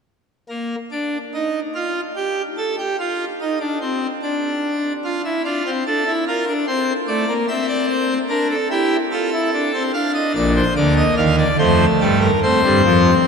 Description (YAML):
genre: classical, baroque-style 3-part fugue for pipe organ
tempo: 73 BPM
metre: 3/4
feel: straight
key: unclear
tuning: A4 = 440 Hz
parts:
  - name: pipe organ, full organ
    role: solo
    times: 0.5-13.3 s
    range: Bb1 to F5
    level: -16 LUFS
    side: equal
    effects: none
room: wet cathedral reverb, RT60 6.6 s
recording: minimal, uncompressed stereo recording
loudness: -17 LUFS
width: side -6 dB against mid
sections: 0.1-13.3 A section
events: none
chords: 0.1 N.C.; 5.0 F; 6.7 Amadd11; 7.5 C7; 9.1 F; 9.9 Bb; 11.6 F